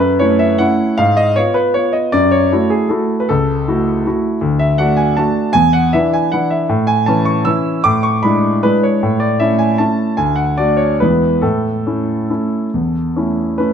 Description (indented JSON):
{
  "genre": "classical, piano waltz",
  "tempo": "135-166 BPM",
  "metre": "3/4",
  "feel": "rubato",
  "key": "A major",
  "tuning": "A4 = 440 Hz",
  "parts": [
    { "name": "warm concert grand piano", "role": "solo", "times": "0.0-13.7 s", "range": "C#2 to E6", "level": "-12 LUFS", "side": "equal", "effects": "none" }
  ],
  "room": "moderate recital hall reverb, RT60 1.6 s",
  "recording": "close, detailed microphones",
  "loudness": "-12 LUFS",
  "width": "side -8 dB against mid",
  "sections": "0.0-13.7 A section",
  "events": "none",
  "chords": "0.0 F#m7; 1.0 Fdim/Ab; 2.1 F#m7; 4.4 D; 5.5 E9; 6.7 A; 7.8 E7/A; 9.0 A; 10.2 D; 11.0 E; 11.4 A"
}